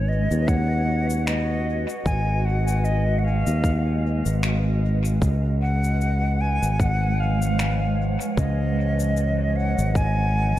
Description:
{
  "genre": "ambient dub",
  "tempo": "76 BPM",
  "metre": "4/4",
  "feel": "swing 57% on 16ths",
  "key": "G# dorian",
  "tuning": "A4 = 440 Hz",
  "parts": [
    { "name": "bright silver concert flute", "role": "melody", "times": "0.0-10.6 s", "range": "C#5 to G#5", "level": "-28 LUFS", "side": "left 1 dB", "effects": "dub echo" },
    { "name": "granular cloud pad", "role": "sustained chords", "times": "0.0-10.6 s", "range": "E#3 to G#5", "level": "-30 LUFS", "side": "right 1 dB", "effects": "built-in reverb" },
    { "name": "overdriven fingered electric bass", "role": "bass", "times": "0.0-10.5 s", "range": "G#1 to D#2", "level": "-21 LUFS", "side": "equal", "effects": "none" },
    { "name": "electronic shaker and finger snaps", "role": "drums", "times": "0.3-10.1 s", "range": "none", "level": "-34 LUFS", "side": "left 2 dB", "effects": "overdrive, dub echo" },
    { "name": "electronic kick drum", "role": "drums", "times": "0.5-10.1 s", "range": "none", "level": "-24 LUFS", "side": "equal", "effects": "overdrive" }
  ],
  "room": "light reverb, digital ambience",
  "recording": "dark, warm production",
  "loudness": "-20 LUFS",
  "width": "side -14 dB against mid",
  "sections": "0.0-10.6 A section",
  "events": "none",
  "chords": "0.0 G#m7; 5.2 C#7"
}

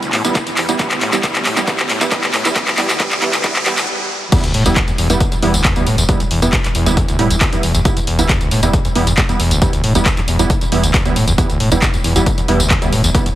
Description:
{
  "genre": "driving peak-time techno",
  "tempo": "136 BPM",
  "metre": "4/4",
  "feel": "straight",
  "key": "E minor",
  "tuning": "A4 = 439 Hz",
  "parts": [
    { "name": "screaming distorted acid line", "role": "riff", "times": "0.0-13.3 s", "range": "D2 to A2", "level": "-19 LUFS", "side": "equal", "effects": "distortion, chorus, sidechain pumping, tape echo" },
    { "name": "rave stab", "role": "stabs", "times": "0.0-13.3 s", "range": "G3 to E4", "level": "-20 LUFS", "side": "right 2 dB", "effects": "chorus, built-in reverb, sidechain pumping, tape echo" },
    { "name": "punchy analog drum machine", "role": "drums", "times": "0.0-13.3 s", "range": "crash cymbal, handclaps, hi-hat, tambourine", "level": "-18 LUFS", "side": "equal", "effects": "sidechain pumping on hats, high-pass filter on hats, high-pass filter on snare, sidechain pumping on perc, high-pass filter on perc, sidechain pumping on cymbals, high-pass filter on cymbals" },
    { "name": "riser", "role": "sound effects", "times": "0.0-3.9 s", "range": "none", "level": "-26 LUFS", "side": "equal", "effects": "none" },
    { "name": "electronic kick drum", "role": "drums", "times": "0.4-13.2 s", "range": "none", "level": "-17 LUFS", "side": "equal", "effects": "none" },
    { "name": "saturated sub bass", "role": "bass", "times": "4.5-13.1 s", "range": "E1", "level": "-20 LUFS", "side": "equal", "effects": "overdrive, sidechain pumping, low-pass filter" }
  ],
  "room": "light reverb, digital ambience",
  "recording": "heavily compressed radio sound, multiband compression, high-pass filter",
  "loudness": "-12 LUFS",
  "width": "side -14 dB against mid",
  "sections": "0.0-4.3 A section; 4.3-13.4 B section",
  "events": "build-up 0.0-4.3; drum fill 0.0-3.9; riser 0.0-3.9; stop 3.9-4.3; drop 4.3-13.4",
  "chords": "0.0 Em"
}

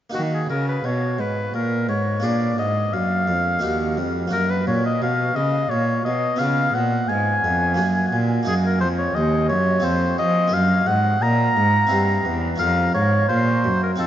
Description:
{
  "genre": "classical, baroque-style sonata movement with continuo",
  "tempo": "87 BPM",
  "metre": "3/4",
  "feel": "straight",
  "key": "Eb minor, Bb minor from 8.5 s",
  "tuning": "A4 = 442 Hz",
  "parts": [
    { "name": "warm oboe", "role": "melody", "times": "0.1-14.1 s", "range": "Gb4 to Bb5", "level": "-21 LUFS", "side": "left 1 dB", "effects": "none" },
    { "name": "harpsichord", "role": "accompaniment", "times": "0.1-14.1 s", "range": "Eb2 to C5", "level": "-25 LUFS", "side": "right 1 dB", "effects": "none" },
    { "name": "rich cello", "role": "bass", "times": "0.1-14.1 s", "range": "Eb2 to F3", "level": "-22 LUFS", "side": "right 1 dB", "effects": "none" }
  ],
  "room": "wet cathedral reverb, RT60 7.3 s",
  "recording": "in a vast, echoing space, nothing above 7.6 kHz",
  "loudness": "-18 LUFS",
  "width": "side -11 dB against mid",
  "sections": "0.1-14.1 A section",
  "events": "none",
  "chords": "0.1 Ebm; 2.2 Bb7; 3.6 Ebm; 4.3 Gb; 6.4 Db7; 7.8 Gb; 8.5 Ebm; 9.8 F; 10.5 Gb; 11.9 C7/G; 12.6 Bbm/F"
}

